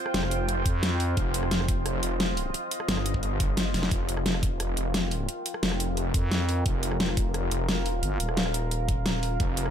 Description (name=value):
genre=dark technical drum and bass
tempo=175 BPM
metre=4/4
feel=straight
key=unclear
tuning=A4 = 440 Hz
part: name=deep dark ambient pad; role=sustained chords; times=0.0-9.7 s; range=F4 to G5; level=-33 LUFS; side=equal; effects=chorus, built-in reverb, sidechain pumping
part: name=wide detuned saw bass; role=bass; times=0.1-9.7 s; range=F1 to G1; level=-29 LUFS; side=equal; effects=chorus, sidechain pumping
part: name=dubstep drum kit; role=drums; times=0.1-9.7 s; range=hi-hat, rim click, snare drum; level=-29 LUFS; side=left 1 dB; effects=none
part: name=growling FM bass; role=bass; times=0.7-1.2, 3.7-3.9, 6.1-9.4 s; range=Eb1 to F2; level=-28 LUFS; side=equal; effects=none
part: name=electronic kick drum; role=drums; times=0.7-9.5 s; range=none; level=-27 LUFS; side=equal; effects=none
room=little or no reverb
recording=none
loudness=-25 LUFS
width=side -9 dB against mid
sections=0.0-9.7 A section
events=drum fill 3.7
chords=0.0 F5